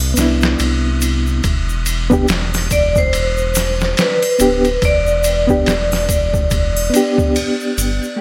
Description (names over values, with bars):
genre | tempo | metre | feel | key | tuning
trip hop | 71 BPM | 4/4 | swing 59% on 16ths | unclear | A4 = 440 Hz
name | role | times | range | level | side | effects
vibraphone with hard mallets | melody | 0.0-7.8 s | B4 to E5 | -21 LUFS | equal | vintage 12-bit sampler grit, tape echo
round analog bass | bass | 0.0-8.0 s | D1 to C2 | -22 LUFS | equal | none
triangle and tube shaker | percussion | 0.0-8.2 s | none | -28 LUFS | equal | none
reed electric piano | accompaniment | 0.1-8.2 s | A3 to G4 | -19 LUFS | equal | fast tremolo, tape echo
trip hop sampler-style drum kit | drums | 0.2-8.0 s | kick drum, ride cymbal, snare drum | -22 LUFS | equal | studio ambience
room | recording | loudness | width
small room ambience | none | -16 LUFS | mono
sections
0.0-8.2 A section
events
none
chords
0.0 Cmaj7; 1.4 Em7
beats
0.60 | 1.44 2.29 3.13 3.98 | 4.82 5.67 6.51 7.36 | 8.21